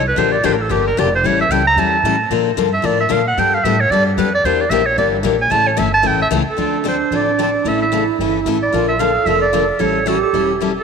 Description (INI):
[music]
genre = acoustic string swing (jazz manouche)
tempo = 225 BPM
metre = 4/4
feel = swing 57% on 8ths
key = unclear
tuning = A4 = 437 Hz
[part]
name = clear clarinet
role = melody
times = 0.0-10.8 s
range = G4 to Bb5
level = -17 LUFS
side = right 3 dB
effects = none
[part]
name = upright bass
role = bass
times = 0.0-10.8 s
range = E1 to Bb2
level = -23 LUFS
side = right 2 dB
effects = none
[part]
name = picked steel-string acoustic guitar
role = accompaniment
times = 0.2-10.7 s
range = C#3 to A4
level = -18 LUFS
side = left 11 dB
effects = none
[part]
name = mellow alto flute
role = second line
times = 6.6-10.7 s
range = D4 to A4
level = -19 LUFS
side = right 12 dB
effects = slapback echo
[sound]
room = moderate plate reverb, RT60 3.3 s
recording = 1960s-style stereo with parts hard left and right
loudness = -13 LUFS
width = side -6 dB against mid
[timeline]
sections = 0.0-6.6 A section; 6.6-10.8 B section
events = clarinet solo 0.0-6.6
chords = 0.2 Bb6; 1.2 A7; 2.3 Bbmaj7; 3.4 Gadd9; 4.4 Em7b5; 5.5 A; 6.6 Dm7; 7.7 A; 8.7 Bbmaj7; 9.8 A7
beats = | 0.17 0.44 0.71 0.98 | 1.24 1.51 1.78 2.04 | 2.31 2.58 2.85 3.11 | 3.38 3.65 3.91 4.18 | 4.45 4.71 4.98 5.25 | 5.51 5.78 6.05 6.32 | 6.58 6.85 7.12 7.38 | 7.65 7.92 8.19 8.46 | 8.72 8.99 9.26 9.53 | 9.79 10.06 10.33 10.60